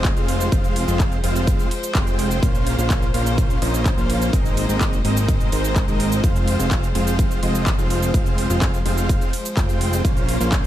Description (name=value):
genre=EDM, festival progressive house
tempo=126 BPM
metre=4/4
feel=straight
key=F minor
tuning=A4 = 439 Hz
part: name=dark studio string section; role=sustained chords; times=0.0-10.7 s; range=Db3 to C5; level=-29 LUFS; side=left 2 dB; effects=sidechain pumping
part: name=big supersaw lead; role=riff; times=0.0-10.7 s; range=Ab3 to G5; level=-24 LUFS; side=right 1 dB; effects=sidechain pumping, ping-pong delay
part: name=fat analog bass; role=bass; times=0.0-10.7 s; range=F1 to Bb1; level=-23 LUFS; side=equal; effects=sidechain pumping
part: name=big-room dance drum kit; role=drums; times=0.0-10.7 s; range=handclaps, hi-hat, ride cymbal, shaker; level=-29 LUFS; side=right 1 dB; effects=small room ambience
part: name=electronic kick drum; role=drums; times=0.0-10.6 s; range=none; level=-20 LUFS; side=equal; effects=small room ambience
room=little or no reverb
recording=none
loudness=-17 LUFS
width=side -12 dB against mid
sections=0.0-10.7 A section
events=none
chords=0.0 Fm; 2.4 Bbmadd9; 4.3 Abadd9; 6.2 Fm; 10.0 Bbmadd9